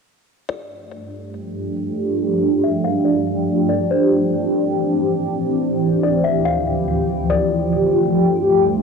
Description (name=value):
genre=hip hop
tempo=141 BPM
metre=4/4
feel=half-time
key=unclear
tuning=A4 = 440 Hz
part: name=kalimba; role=melody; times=0.5-8.8 s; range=C5 to F5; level=-24 LUFS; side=left 6 dB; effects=low-pass filter, cassette tape, analog delay
part: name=shimmering ambient pad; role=sustained chords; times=1.1-8.8 s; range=D2 to G4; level=-17 LUFS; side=right 1 dB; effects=chorus, built-in reverb, phaser, low-pass filter, cassette tape
room=moderate lush hall reverb, RT60 2.9 s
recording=home recording on cassette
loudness=-16 LUFS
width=side -5 dB against mid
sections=0.5-8.8 A section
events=filter sweep 0.5-8.8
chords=0.5 Gsus2; 3.9 Am7; 5.6 Dm11; 7.3 Gsus2